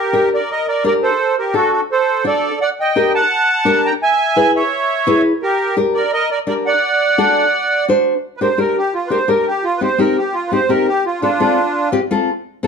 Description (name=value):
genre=latin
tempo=170 BPM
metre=4/4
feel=straight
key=G harmonic minor, G minor from 8.2 s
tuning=A4 = 439 Hz
part: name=accordion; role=melody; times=0.0-11.9 s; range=D4 to Bb5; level=-15 LUFS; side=right 3 dB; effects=light tremolo tuning, plate reverb
part: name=nylon-string guitar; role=accompaniment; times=0.1-12.7 s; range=C4 to C5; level=-16 LUFS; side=left 3 dB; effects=none
room=moderate studio reverb, RT60 0.7 s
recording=dark, warm production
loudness=-13 LUFS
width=side -6 dB against mid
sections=0.0-8.2 A section; 8.2-12.7 B section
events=accordion solo 8.2-12.7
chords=0.0 Gm; 1.2 D7; 2.6 Gm; 4.0 E; 5.4 Gm; 6.8 D7; 8.2 Gm; 9.6 Cm; 11.1 F